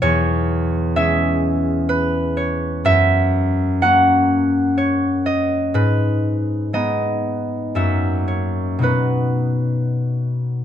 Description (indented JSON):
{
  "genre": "classical, solo harp piece",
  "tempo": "52-64 BPM",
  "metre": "3/4",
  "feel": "rubato",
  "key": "unclear",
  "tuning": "A4 = 441 Hz",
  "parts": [
    { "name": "concert harp", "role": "solo", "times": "0.0-10.6 s", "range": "E2 to F#5", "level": "-16 LUFS", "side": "equal", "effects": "none" }
  ],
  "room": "light reverb",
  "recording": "close, detailed microphones",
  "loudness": "-16 LUFS",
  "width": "side -9 dB against mid",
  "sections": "0.0-10.6 A section",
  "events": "none",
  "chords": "0.0 C#m/E; 2.9 F#7; 5.7 G#m; 7.8 F#7; 8.8 B"
}